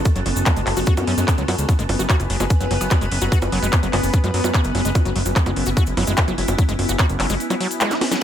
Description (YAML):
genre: psychedelic trance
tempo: 147 BPM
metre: 4/4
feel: straight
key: F# minor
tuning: A4 = 440 Hz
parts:
  - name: evolving wavetable pad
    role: sustained chords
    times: 0.0-8.2 s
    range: B3 to B4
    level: -26 LUFS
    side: left 1 dB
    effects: ensemble chorus, built-in reverb, phaser, sidechain pumping
  - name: fat analog bass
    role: bass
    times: 0.0-7.4 s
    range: F#1 to F#2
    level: -22 LUFS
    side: equal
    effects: none
  - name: warbly tape-like pad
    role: texture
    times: 0.0-8.2 s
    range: C#4 to F#6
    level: -30 LUFS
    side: right 1 dB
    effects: chorus, built-in reverb, sidechain pumping
  - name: electronic kick drum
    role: drums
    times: 0.1-7.1 s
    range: none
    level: -17 LUFS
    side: equal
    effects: overdrive
  - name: techno drum kit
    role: drums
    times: 0.1-8.2 s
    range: bongos, handclaps, hi-hat, snare drum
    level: -24 LUFS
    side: equal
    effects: none
  - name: cabasa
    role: percussion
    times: 0.1-8.2 s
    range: none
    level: -33 LUFS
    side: left 3 dB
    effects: none
  - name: screaming distorted acid line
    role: riff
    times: 0.2-8.2 s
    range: F#3 to F#4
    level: -28 LUFS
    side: left 1 dB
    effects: distortion, chorus, auto-pan, sidechain pumping, ping-pong delay
  - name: metallic wobble bass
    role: second line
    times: 2.8-4.5 s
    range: F#3 to B3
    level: -34 LUFS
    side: right 2 dB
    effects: chorus, cassette tape, sidechain pumping, high-pass filter, ping-pong delay
room: digital ambience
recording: none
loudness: -17 LUFS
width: side -10 dB against mid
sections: 0.0-8.2 A section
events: drum fill 7.9-8.2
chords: 0.0 F#5